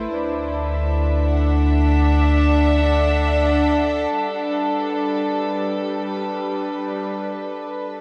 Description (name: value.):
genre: ambient.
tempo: free time.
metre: none.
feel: none.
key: unclear.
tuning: A4 = 440 Hz.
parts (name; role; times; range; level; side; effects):
dark studio string section; sustained chords; 0.0-8.0 s; G3 to F#5; -22 LUFS; equal; low-pass filter, shimmer reverb.
warm sub bass; bass; 0.0-4.1 s; D2; -21 LUFS; equal; none.
room: wet plate reverb, RT60 2.7 s.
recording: none.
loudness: -20 LUFS.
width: mono.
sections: 0.0-4.1 A section; 4.1-8.0 B section.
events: filter sweep on string section 4.1-8.0.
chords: 0.1 D7; 4.1 Gmaj9.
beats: free time.